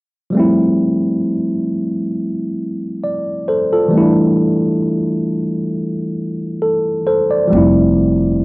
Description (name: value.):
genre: R&B, neo-soul.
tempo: 67 BPM.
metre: 4/4.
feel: swing 54% on 16ths.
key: F major.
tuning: A4 = 440 Hz.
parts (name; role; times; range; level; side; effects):
tine electric piano; accompaniment; 0.3-8.4 s; E3 to D5; -14 LUFS; equal; cassette tape.
upright bass; bass; 7.5-8.4 s; F1; -17 LUFS; equal; none.
room: small room ambience.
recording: home recording on cassette.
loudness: -14 LUFS.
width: side -24 dB against mid.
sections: 0.3-8.4 A section.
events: none.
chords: 0.3 Fmaj9; 3.9 A7sus4; 7.5 Fmaj9.